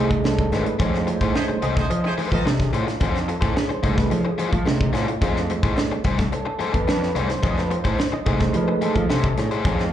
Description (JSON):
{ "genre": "funk", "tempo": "108 BPM", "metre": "4/4", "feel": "straight", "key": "F mixolydian", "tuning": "A4 = 440 Hz", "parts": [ { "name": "biting overdriven guitar", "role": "accompaniment", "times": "0.0-9.8 s", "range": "A3 to C5", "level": "-27 LUFS", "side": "left 7 dB", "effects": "plate reverb, slapback echo" }, { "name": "mellow tonewheel organ", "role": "stabs", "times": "0.0-9.9 s", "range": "G#3 to Eb5", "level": "-26 LUFS", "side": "right 4 dB", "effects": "chorus vibrato, slow rotary speaker, plate reverb, slapback echo" }, { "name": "fuzz picked electric bass", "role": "bass", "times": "0.0-9.9 s", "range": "G#1 to F3", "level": "-24 LUFS", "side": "equal", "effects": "overdrive" }, { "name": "tight funk drum kit", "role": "drums", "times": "0.1-9.9 s", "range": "hi-hat, kick drum, snare drum", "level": "-24 LUFS", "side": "equal", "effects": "vintage 12-bit sampler grit" }, { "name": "cowbell", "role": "percussion", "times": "0.2-9.8 s", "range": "none", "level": "-36 LUFS", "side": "left 6 dB", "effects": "slapback echo" }, { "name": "warm horn section", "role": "second line", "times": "1.3-2.5 s", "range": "A3 to Eb5", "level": "-29 LUFS", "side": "right 1 dB", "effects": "tube saturation, plate reverb, slapback echo" } ], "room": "light reverb", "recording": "live gig heard through the venue's PA, club reverb", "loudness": "-19 LUFS", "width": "side -11 dB against mid", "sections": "0.0-9.9 A section", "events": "tonewheel organ solo 0.0-9.9; band accent 0.8-3.0", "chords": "0.0 F7#9" }